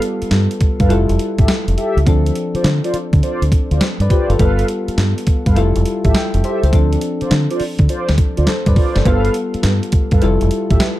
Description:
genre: R&B, new jack swing.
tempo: 103 BPM.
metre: 4/4.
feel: swing 67% on 16ths.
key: D dorian.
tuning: A4 = 440 Hz.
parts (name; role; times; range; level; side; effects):
soft electric-piano-like synth keys; accompaniment; 0.0-11.0 s; F3 to G5; -20 LUFS; left 2 dB; chorus.
crisp 8-bit digital drum machine; drums; 0.0-11.0 s; hi-hat, kick drum, snare drum; -16 LUFS; equal; overdrive.
deep dub fingered electric bass; bass; 0.2-10.8 s; F1 to D3; -16 LUFS; equal; none.
mellow synth brass; stabs; 0.8-10.8 s; F4 to F5; -23 LUFS; right 1 dB; chorus, tape echo.
cowbell; percussion; 9.1-11.0 s; none; -31 LUFS; right 8 dB; none.
room: little or no reverb.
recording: dark, warm production.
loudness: -13 LUFS.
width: side -15 dB against mid.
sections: 0.0-11.0 A section.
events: none.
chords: 0.0 G9; 0.9 Fmaj9; 2.1 Dm7; 4.4 G9; 5.6 Fmaj9; 6.7 Dm7; 9.1 G9; 10.2 Fmaj9.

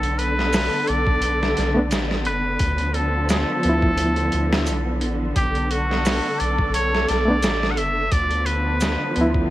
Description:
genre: trip hop.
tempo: 87 BPM.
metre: 4/4.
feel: swing 55% on 16ths.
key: B minor.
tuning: A4 = 441 Hz.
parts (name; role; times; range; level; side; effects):
trumpet with straight mute; melody; 0.0-9.5 s; F#4 to F#5; -24 LUFS; equal; tape echo.
warm studio string section; sustained chords; 0.0-9.5 s; D3 to A4; -26 LUFS; left 1 dB; none.
soft dub sub bass; bass; 0.0-9.5 s; F#1 to D2; -25 LUFS; equal; none.
trip hop sampler-style drum kit; drums; 0.0-9.5 s; hi-hat, kick drum, snare drum; -24 LUFS; equal; none.
maracas; percussion; 0.5-9.0 s; none; -36 LUFS; right 4 dB; none.
reed electric piano; accompaniment; 1.7-9.5 s; F3 to E4; -23 LUFS; equal; fast tremolo.
room: light reverb, small room ambience.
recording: vinyl crackle.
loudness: -18 LUFS.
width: side -15 dB against mid.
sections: 0.0-9.5 A section.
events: none.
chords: 0.0 Bm7; 2.6 Dm6; 5.4 Bm7; 8.1 Dm6.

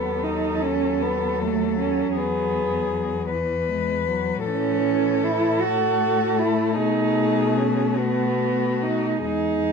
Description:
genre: classical, lyrical piece for cello ensemble.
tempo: 45-54 BPM (dotted quarters).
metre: 12/8.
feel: rubato.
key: unclear.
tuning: A4 = 445 Hz.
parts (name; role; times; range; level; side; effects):
warm cello; melody; 0.0-9.7 s; F#4 to B4; -26 LUFS; left 8 dB; none.
dark cello; second line; 0.0-9.7 s; A3 to F#4; -23 LUFS; right 6 dB; none.
rich cello; accompaniment; 0.0-9.7 s; E3 to A3; -28 LUFS; left 7 dB; none.
warm cello; bass; 0.0-9.7 s; D#2 to B2; -29 LUFS; right 1 dB; none.
room: light reverb.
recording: minimal, uncompressed stereo recording.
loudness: -20 LUFS.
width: side -5 dB against mid.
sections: 0.0-9.7 A section.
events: none.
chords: 0.0 D#m7b5; 2.2 E; 4.4 A; 6.8 B7.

